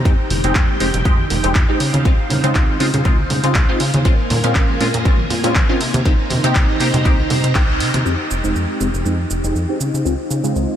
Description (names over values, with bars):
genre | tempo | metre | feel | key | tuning
filtered disco house | 120 BPM | 4/4 | swing 54% on 16ths | F minor | A4 = 440 Hz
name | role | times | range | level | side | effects
string machine, full ensemble | sustained chords | 0.0-10.8 s | Bb3 to Bb5 | -24 LUFS | equal | phaser, ensemble chorus, sidechain pumping, low-pass filter
plucky analog bass | bass | 0.0-10.7 s | F1 to Db3 | -20 LUFS | equal | tube saturation, sidechain pumping, low-pass filter
funky polysynth comp | accompaniment | 0.1-10.8 s | Ab3 to G4 | -22 LUFS | equal | chorus, phaser, sidechain pumping, low-pass filter
electronic kick drum | drums | 0.1-7.7 s | none | -16 LUFS | equal | studio reverb
punchy analog drum machine | drums | 0.1-10.7 s | cabasa, handclaps, hi-hat | -24 LUFS | equal | sidechain pumping on hats, studio reverb, sidechain pumping on perc
tambourine and congas | percussion | 0.1-8.0 s | none | -27 LUFS | right 3 dB | none
room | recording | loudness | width
light reverb, digital ambience | none | -14 LUFS | side -10 dB against mid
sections
0.0-8.1 A section; 8.1-10.8 B section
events
filter sweep 0.0-8.1, 8.1-10.8; band accent 7.6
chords
0.1 Fm9; 1.8 Dbmaj9; 4.1 Bbm7; 5.8 Cm7; 8.1 Fm9; 9.8 Dbmaj9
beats
| 0.05 0.55 1.05 1.55 | 2.05 2.55 3.05 3.55 | 4.05 4.55 5.05 5.55 | 6.05 6.55 7.05 7.55 | 8.05 8.55 9.05 9.55 | 10.05 10.55